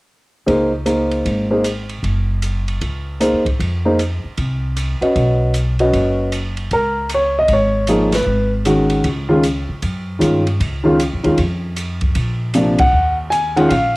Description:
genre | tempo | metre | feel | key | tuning
jazz piano trio | 154 BPM | 4/4 | swing 64% on 8ths | Db major | A4 = 440 Hz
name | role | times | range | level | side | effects
warm grand piano | melody | 0.5-14.0 s | C3 to Ab5 | -15 LUFS | equal | cassette tape, plate reverb
upright bass | bass | 0.5-14.0 s | Gb1 to Db3 | -20 LUFS | equal | none
open jazz drum kit | drums | 0.5-13.8 s | hi-hat, kick drum, ride cymbal, snare drum | -25 LUFS | equal | cassette tape
room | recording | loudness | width
moderate booth ambience, RT60 0.2 s | home recording on cassette | -15 LUFS | side -22 dB against mid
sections
0.5-6.7 A section; 6.7-14.0 B section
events
break 6.3-6.7; band accent 8.1, 12.7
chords
0.5 Db5; 2.0 Gb5; 3.6 F5; 5.2 Cbadd9; 6.7 Db5; 8.3 Ab5; 9.0 N.C.; 9.8 Gb5; 11.4 N.C.; 12.2 Bb; 12.9 Eb5

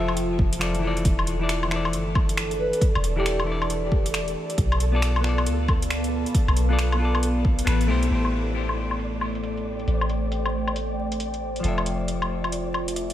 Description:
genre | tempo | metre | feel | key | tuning
future garage | 136 BPM | 4/4 | swing 63% on 16ths | A minor | A4 = 438 Hz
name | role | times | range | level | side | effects
semi-hollow electric guitar | accompaniment | 0.0-13.1 s | E3 to E5 | -30 LUFS | left 3 dB | sidechain pumping, ping-pong delay
deep dark ambient pad | sustained chords | 0.0-13.1 s | A3 to B5 | -29 LUFS | equal | chorus, built-in reverb, sidechain pumping
soft 808-style bass | bass | 0.0-13.1 s | E1 to D2 | -26 LUFS | equal | sidechain pumping
deep house drum kit | drums | 0.1-13.1 s | finger snaps, hi-hat, woodblock | -30 LUFS | left 1 dB | overdrive, low-pass filter on hats, studio reverb, low-pass filter on perc, low-pass filter on snare
electronic kick drum | drums | 0.4-7.6 s | none | -22 LUFS | equal | overdrive, studio reverb
flickering grainy texture | texture | 1.4-13.1 s | A4 to D5 | -38 LUFS | right 1 dB | built-in reverb
breathy flute-like synth lead | melody | 2.6-3.4 s | G4 to B4 | -31 LUFS | left 1 dB | chorus, ping-pong delay
room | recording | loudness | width
light reverb | vinyl crackle | -21 LUFS | side -12 dB against mid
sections
0.0-8.1 A section; 8.1-13.1 B section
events
band accent 7.7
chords
0.0 Fmaj7; 1.1 E7sus4; 4.6 Bm7b5; 8.1 Am7; 11.6 Fmaj7

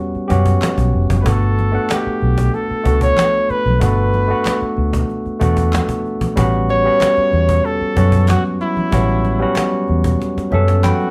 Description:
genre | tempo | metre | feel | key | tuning
lush 1970s-style soul | 94 BPM | 4/4 | straight | unclear | A4 = 440 Hz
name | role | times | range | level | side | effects
barky tine electric piano | accompaniment | 0.0-11.1 s | F#3 to G5 | -22 LUFS | equal | none
cajon | drums | 0.1-11.1 s | none | -26 LUFS | equal | none
vintage muted fingered electric bass | bass | 0.2-10.9 s | F1 to F#2 | -19 LUFS | equal | none
congas | percussion | 0.3-11.0 s | none | -30 LUFS | equal | none
group handclap | percussion | 0.6-11.0 s | none | -34 LUFS | equal | none
warm flugelhorn | melody | 1.2-11.1 s | E4 to C#5 | -21 LUFS | equal | none
small celesta | texture | 10.8-11.1 s | B5 | -28 LUFS | equal | none
room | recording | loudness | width
moderate studio reverb, RT60 0.8 s | band playing live in one room | -16 LUFS | mono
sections
0.0-11.1 A section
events
drum fill 10.2-11.1; tine electric piano fill 10.2-11.1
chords
0.0 A13 (rootless); 1.3 Gmaj9; 6.4 A13

